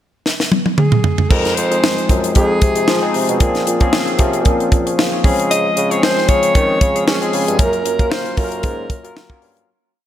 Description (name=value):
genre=polished 1980s jazz-funk pop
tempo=115 BPM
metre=4/4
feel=swing 54% on 16ths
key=unclear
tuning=A4 = 440 Hz
part: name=tight funk drum kit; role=drums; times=0.3-9.7 s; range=crash cymbal, hi-hat, kick drum, snare drum, toms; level=-16 LUFS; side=equal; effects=none
part: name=breathy alto saxophone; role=melody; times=0.8-9.4 s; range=Ab4 to Eb5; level=-19 LUFS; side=equal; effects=slapback echo
part: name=barky tine electric piano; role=accompaniment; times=1.3-9.7 s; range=E3 to F5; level=-19 LUFS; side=left 2 dB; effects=analog chorus, slapback echo
part: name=warm bassoon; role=bass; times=1.3-9.6 s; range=F2 to Db4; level=-21 LUFS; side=right 1 dB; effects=none
room=light reverb, small room ambience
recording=none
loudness=-13 LUFS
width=side -11 dB against mid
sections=0.0-1.3 pickup bar; 1.3-9.7 pre-chorus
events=drum fill 0.3-1.3; fade-out 7.6-9.7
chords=0.0 N.C.; 1.3 Fm7; 3.4 Bbm9; 5.2 Dbmaj7; 7.6 Gbmaj7